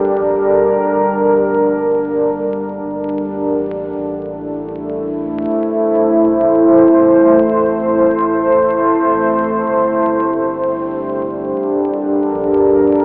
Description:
ambient dub; 79 BPM; 4/4; swing 58% on 16ths; G dorian; A4 = 442 Hz
deep dark ambient pad; sustained chords; 0.0-13.0 s; G3 to C5; -12 LUFS; equal; chorus, built-in reverb
warm sub bass; bass; 0.2-12.7 s; E1 to C2; -34 LUFS; equal
wet cathedral reverb, RT60 5.9 s; dreamy mix soaked in reverb, vinyl crackle, telephone sound; -12 LUFS; side -29 dB against mid
0.0-13.0 A section
0.0 Gmadd9; 3.6 Am; 9.7 Gmadd9
| 0.55 1.31 2.07 2.83 | 3.59 4.35 5.11 5.87 | 6.63 7.39 8.15 8.91 | 9.67 10.43 11.19 11.95 | 12.71

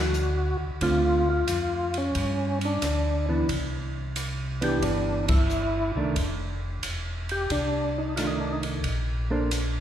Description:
soul jazz organ trio; 90 BPM; 4/4; swing 69% on 8ths; A4 = 441 Hz
overdriven tonewheel organ; melody; 0.0-8.6 s; C#4 to G4; -28 LUFS; left 1 dB; slow rotary speaker, chorus vibrato
hollow-body jazz guitar; accompaniment; 0.0-9.5 s; D3 to C5; -29 LUFS; right 2 dB
mellow tonewheel organ; bass; 0.0-9.8 s; E1 to G2; -29 LUFS; equal; slow rotary speaker
open jazz drum kit; drums; 0.1-9.7 s; hi-hat, kick drum, ride cymbal, rim click; -31 LUFS; equal
wet scoring stage reverb, RT60 1.6 s; recorded in a church or concert hall; -24 LUFS; side -10 dB against mid
0.0-9.8 A section
band accent 5.2-5.5
0.0 Gmaj7(no3) (rootless); 0.8 Dm7; 2.1 G6; 3.5 Cmaj9; 6.2 F6; 8.8 Bbmaj9
0.14 | 0.81 1.48 2.15 2.82 | 3.49 4.16 4.83 5.50 | 6.17 6.84 7.51 8.18 | 8.85 9.52

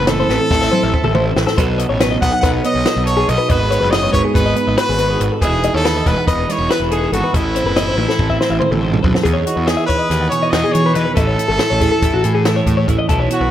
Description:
math rock and midwest emo; 281 BPM (eighths); 9/8; straight; E major; A4 = 439 Hz
brilliant trumpet; melody; 0.0-13.5 s; E4 to F#5; -19 LUFS; equal; slapback echo
twelve-string electric guitar; accompaniment; 0.0-13.5 s; E2 to A4; -21 LUFS; right 6 dB; phaser
twelve-string electric guitar; arpeggios; 0.0-13.5 s; F#4 to G#5; -20 LUFS; left 5 dB; slapback echo
fuzz picked electric bass; bass; 0.0-13.5 s; E1 to E3; -19 LUFS; equal; overdrive
compact cocktail drum kit; drums; 0.1-13.4 s; hi-hat, kick drum, snare drum, toms; -19 LUFS; equal
moderate lush hall reverb, RT60 1.6 s, studio reverb; big arena sound; -13 LUFS; side -11 dB against mid
0.0-9.3 A section; 9.3-13.5 B section
drum fill 0.3-1.6, 8.0-9.3
0.0 Amadd9; 1.6 B7; 3.5 G#m7; 5.4 Emaj7; 7.3 Amadd9; 9.3 Emaj7; 11.2 Amaj7
0.08 0.29 0.51 0.72 0.93 1.15 1.36 | 1.57 1.79 2.00 2.21 2.43 2.64 2.86 3.07 3.28 | 3.50 3.71 3.92 4.14 4.35 4.56 4.78 4.99 5.20 | 5.42 5.63 5.84 6.06 6.27 6.48 6.70 6.91 7.12 | 7.33 7.55 7.76 7.97 8.19 8.40 8.61 8.83 9.04 | 9.25 9.47 9.68 9.89 10.11 10.32 10.53 10.74 10.96 | 11.17 11.38 11.60 11.81 12.02 12.24 12.45 12.66 12.88 | 13.09 13.30

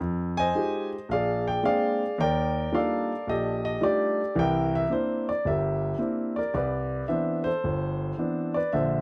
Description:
solo jazz; 110 BPM; 4/4; swing 67% on 8ths; A4 = 440 Hz
warm grand piano; solo; 0.0-9.0 s; G1 to Ab5; -27 LUFS; equal
light reverb; -27 LUFS; mono
0.0-6.5 A section; 6.5-9.0 B section
0.0 Fm9; 1.1 Bb13; 2.2 Ebmaj9#11; 4.4 C9; 6.5 Cmaj9
| 0.01 0.56 1.10 1.65 | 2.19 2.73 3.28 3.82 | 4.37 4.91 5.46 6.00 | 6.55 7.09 7.64 8.18 | 8.73

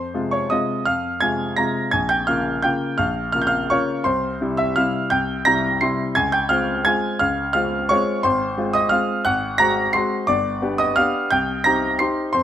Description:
classical, piano waltz; 173 BPM; 3/4; uneven beats, rubato; C minor from 8.2 s; A4 = 441 Hz
clear grand piano; solo; 0.0-12.4 s; G1 to C7; -18 LUFS; equal
light reverb; close, detailed microphones; -18 LUFS; side -10 dB against mid
0.0-12.4 A section
0.0 Fm; 1.9 Bbm; 4.1 C; 6.2 Dbmaj7; 8.2 Fm/Ab; 9.3 Ab7; 10.3 G; 11.3 Cm
0.15 0.52 | 0.87 1.22 1.58 | 1.93 2.28 2.65 | 2.99 3.35 3.71 | 4.06 4.42 4.78 | 5.13 5.47 5.82 | 6.17 6.51 6.87 | 7.22 7.55 7.91 | 8.24 8.57 8.92 | 9.26 9.60 9.95 | 10.29 10.63 10.98 | 11.32 11.66 12.00 | 12.34

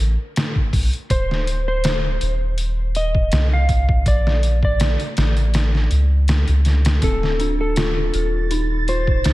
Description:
trip hop; 81 BPM; 4/4; swing 54% on 16ths; A4 = 440 Hz
soft dub sub bass; bass; 0.0-9.3 s; D1 to C#2; -18 LUFS; equal
trip hop sampler-style drum kit; drums; 0.4-9.3 s; hi-hat, kick drum, snare drum; -21 LUFS; equal
clean lap steel guitar; melody; 1.1-9.3 s; A4 to F5; -25 LUFS; equal; dub echo
dark detuned synth bell; arpeggios; 7.0-9.3 s; C4 to A4; -25 LUFS; left 1 dB; chorus, vintage 12-bit sampler grit, dub echo
wind-like tuned noise texture; texture; 7.7-9.3 s; A6; -31 LUFS; right 2 dB; built-in reverb
light reverb, digital ambience; -16 LUFS; side -18 dB against mid
0.0-9.3 A section
0.0 Asus2; 1.1 Cmadd9/D; 2.6 Cmadd11/Eb; 4.1 Bbmaj7; 5.5 A; 7.0 Dm7; 8.5 Ebsus2
0.36 | 1.10 1.84 2.58 3.32 | 4.06 4.80 5.54 6.29 | 7.03 7.77 8.51 9.25

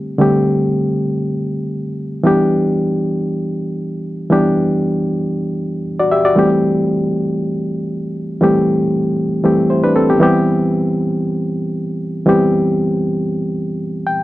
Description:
disco; 117 BPM; 4/4; straight; E minor; A4 = 440 Hz
barky reed electric piano; solo; 0.0-14.2 s; D3 to G5; -14 LUFS; equal; overdrive
light reverb; dry, close 1970s-style studio recording; -14 LUFS; side -16 dB against mid
0.0-14.2 A section
reed electric piano fill 13.8-14.2
0.0 D7sus4; 2.3 Em7; 6.4 Am7; 10.2 Cmaj7
| 0.20 0.71 1.22 1.74 | 2.25 2.77 3.28 3.79 | 4.31 4.82 5.33 5.85 | 6.36 6.87 7.39 7.90 | 8.41 8.93 9.44 9.95 | 10.47 10.98 11.49 12.01 | 12.52 13.04 13.55 14.06

